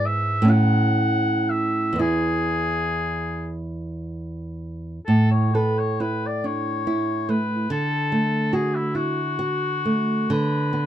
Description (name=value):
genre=romantic duo for oboe and classical guitar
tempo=37-49 BPM (dotted quarters)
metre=6/8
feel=rubato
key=A major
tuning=A4 = 439 Hz
part: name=warm oboe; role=melody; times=0.0-10.9 s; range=E4 to F#5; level=-25 LUFS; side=left 4 dB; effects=none
part: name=nylon-string guitar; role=accompaniment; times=0.0-10.9 s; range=E2 to A4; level=-22 LUFS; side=right 2 dB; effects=none
room=light reverb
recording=none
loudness=-20 LUFS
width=side -11 dB against mid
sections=0.0-5.1 A section; 5.1-10.9 B section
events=none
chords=0.0 E/G#; 0.5 A; 2.0 E; 5.1 A; 7.7 D; 10.3 Bm/D